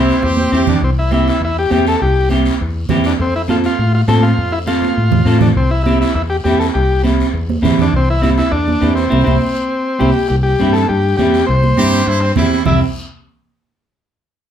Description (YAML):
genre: latin, cumbia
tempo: 203 BPM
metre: 4/4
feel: straight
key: C major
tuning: A4 = 440 Hz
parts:
  - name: combo organ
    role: melody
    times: 0.0-12.8 s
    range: C4 to E5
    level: -17 LUFS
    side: left 2 dB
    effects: none
  - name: brilliant trumpet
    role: second line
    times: 0.0-0.8, 11.8-12.8 s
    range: C4 to G4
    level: -22 LUFS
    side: right 3 dB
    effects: none
  - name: clean electric guitar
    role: accompaniment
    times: 0.0-12.8 s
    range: C4 to C5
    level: -18 LUFS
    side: right 2 dB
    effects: none
  - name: fingered electric bass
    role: bass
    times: 0.0-12.8 s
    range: C2 to A2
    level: -16 LUFS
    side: left 1 dB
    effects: none
  - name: guiro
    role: percussion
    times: 0.1-12.7 s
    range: none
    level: -30 LUFS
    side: left 3 dB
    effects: none
  - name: congas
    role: percussion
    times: 0.2-12.7 s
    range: none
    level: -20 LUFS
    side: right 5 dB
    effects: none
room: wet small room reverb, RT60 0.5 s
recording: heard from further back in the room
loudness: -12 LUFS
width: side -9 dB against mid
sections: 0.8-10.3 A section; 10.3-12.7 B section; 12.7-13.8 C section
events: drum fill 0.2-0.8, 4.7-5.6, 9.1-10.3; band accent 9.1-10.3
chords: 0.0 C; 3.2 F; 5.6 C